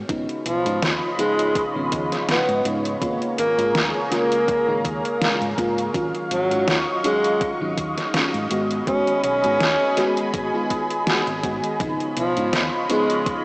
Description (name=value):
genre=vaporwave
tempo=82 BPM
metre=4/4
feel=swing 55% on 16ths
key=G# dorian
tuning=A4 = 445 Hz
part: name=FM electric piano with soft pad layer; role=accompaniment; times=0.1-13.4 s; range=C#3 to F#4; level=-26 LUFS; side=equal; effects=phaser, lush chorus, cassette tape, analog delay
part: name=lush unison pad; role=sustained chords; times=0.4-13.4 s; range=F#3 to C#6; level=-26 LUFS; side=equal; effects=chorus, phaser, vintage 12-bit sampler grit, cassette tape
part: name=hollow-body short-scale fingered electric bass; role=bass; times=0.1-13.3 s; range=G#1 to G#2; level=-31 LUFS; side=equal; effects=none
part: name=detuned 8-bit digital drum machine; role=drums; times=0.1-13.4 s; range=hi-hat, snare drum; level=-25 LUFS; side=equal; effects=overdrive, studio reverb, cassette tape
part: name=electronic kick drum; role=drums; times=0.1-13.4 s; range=none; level=-29 LUFS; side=equal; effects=overdrive, studio reverb, cassette tape
part: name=clear tenor saxophone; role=melody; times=0.5-13.3 s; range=E#3 to C#4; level=-23 LUFS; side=equal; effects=tape echo
room=wet lush hall reverb, RT60 2.7 s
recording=home recording on cassette, small speaker sound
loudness=-19 LUFS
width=side -26 dB against mid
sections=0.0-13.4 A section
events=none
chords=0.1 C#9/G#; 3.0 A#m7/G#; 5.9 D#m9/G#; 8.5 G#m7; 11.8 C#9/G#